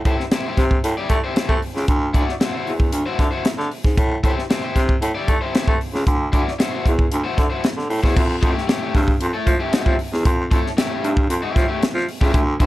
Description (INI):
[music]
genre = funk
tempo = 115 BPM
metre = 4/4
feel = straight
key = unclear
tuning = A4 = 440 Hz
[part]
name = overdriven semi-hollow guitar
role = accompaniment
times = 0.1-12.7 s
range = A3 to D5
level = -26 LUFS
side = left 3 dB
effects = none
[part]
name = raspy baritone saxophone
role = bass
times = 0.1-12.7 s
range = C#2 to A3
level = -21 LUFS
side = equal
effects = none
[part]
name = crisp fusion drum kit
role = drums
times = 0.1-12.7 s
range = crash cymbal, hi-hat, kick drum, snare drum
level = -19 LUFS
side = equal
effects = none
[sound]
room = small room ambience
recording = dark, warm production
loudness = -17 LUFS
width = side -16 dB against mid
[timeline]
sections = 0.0-8.2 A section; 8.2-12.7 B section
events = none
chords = 0.0 Am7; 1.9 D9; 4.0 Am7; 6.1 D9; 8.2 Fmaj9